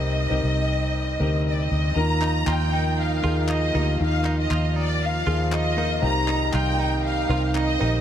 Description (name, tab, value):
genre	piano-driven pop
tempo	118 BPM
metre	4/4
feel	straight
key	Eb major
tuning	A4 = 441 Hz
part	warm studio violin section	melody	0.0-8.0 s	D5 to Bb5	-26 LUFS	left 1 dB	none
part	warm grand piano	accompaniment	0.0-8.0 s	C3 to C5	-29 LUFS	left 3 dB	none
part	pipe organ, cornet	sustained chords	0.0-8.0 s	C3 to F4	-35 LUFS	right 3 dB	none
part	vintage muted fingered electric bass	bass	0.0-8.0 s	Bb1 to Eb2	-23 LUFS	equal	none
part	warm French horn section	second line	2.0-8.0 s	Eb3 to F4	-30 LUFS	right 3 dB	ping-pong delay
part	direct-recorded clean electric guitar	riff	2.2-7.9 s	Eb4 to F4	-34 LUFS	right 6 dB	wide subtle chorus
part	group handclap	percussion	2.2-7.7 s	none	-39 LUFS	left 5 dB	none
room	moderate huge ambient reverb, RT60 8.1 s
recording	dreamy mix soaked in reverb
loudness	-20 LUFS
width	side -10 dB against mid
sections	0.0-2.0 A section; 2.0-8.0 B section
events	none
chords	0.0 Cm7; 2.0 Ebsus2; 6.0 Cm7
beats	0.44 0.94 1.45 | 1.96 2.47 2.98 3.49 | 4.00 4.50 5.01 5.52 | 6.03 6.54 7.05 7.55